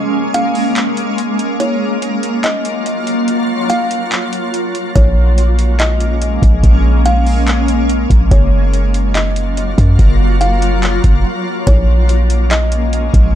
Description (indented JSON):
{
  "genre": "hip hop, atmospheric cloud-rap",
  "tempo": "143 BPM",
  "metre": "4/4",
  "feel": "half-time",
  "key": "Bb minor",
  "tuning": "A4 = 444 Hz",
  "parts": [
    { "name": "shimmering ambient pad", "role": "sustained chords", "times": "0.0-13.3 s", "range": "Gb3 to F4", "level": "-17 LUFS", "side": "equal", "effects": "chorus, built-in reverb, sidechain pumping" },
    { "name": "kalimba", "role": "melody", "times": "0.3-13.3 s", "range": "Db5 to F5", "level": "-22 LUFS", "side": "equal", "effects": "digital delay" },
    { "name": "booming analog drum machine", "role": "drums", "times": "0.3-13.3 s", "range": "handclaps, hi-hat, kick drum", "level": "-15 LUFS", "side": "equal", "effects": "vintage 12-bit sampler grit" },
    { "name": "warm 808-style bass", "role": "bass", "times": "5.0-13.3 s", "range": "Gb1 to Gb2", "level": "-12 LUFS", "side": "equal", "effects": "none" }
  ],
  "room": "little or no reverb",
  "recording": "dark, warm production",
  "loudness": "-11 LUFS",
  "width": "side -11 dB against mid",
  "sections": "0.0-11.7 A section; 11.7-13.3 B section",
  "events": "break 0.0-5.0, 11.3-11.7",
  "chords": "0.0 Bbm7; 1.6 Gbmaj7; 5.0 Bbm7; 8.3 Gbmaj7; 11.7 Bbm7"
}